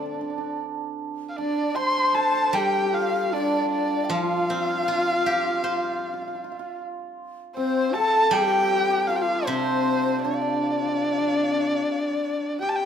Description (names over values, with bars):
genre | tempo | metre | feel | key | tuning
chinese traditional, Chinese chamber ensemble | 78 BPM | 4/4 | rubato | D yu mode | A4 = 440 Hz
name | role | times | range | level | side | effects
dark erhu | melody | 0.0-12.9 s | C5 to C6 | -26 LUFS | right 1 dB | none
breathy bright low xiao | second line | 0.0-12.9 s | C5 to C6 | -30 LUFS | left 6 dB | none
dark horsehead fiddle | second line | 0.0-12.9 s | C4 to C5 | -27 LUFS | left 4 dB | none
hammered dulcimer | second line | 0.0-12.9 s | C4 to C5 | -29 LUFS | right 8 dB | none
steel-string zither | accompaniment | 0.0-11.8 s | C3 to C5 | -33 LUFS | equal | none
room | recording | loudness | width
light reverb | minimal, uncompressed stereo recording | -21 LUFS | side -8 dB against mid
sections
0.0-12.9 A section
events
none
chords
none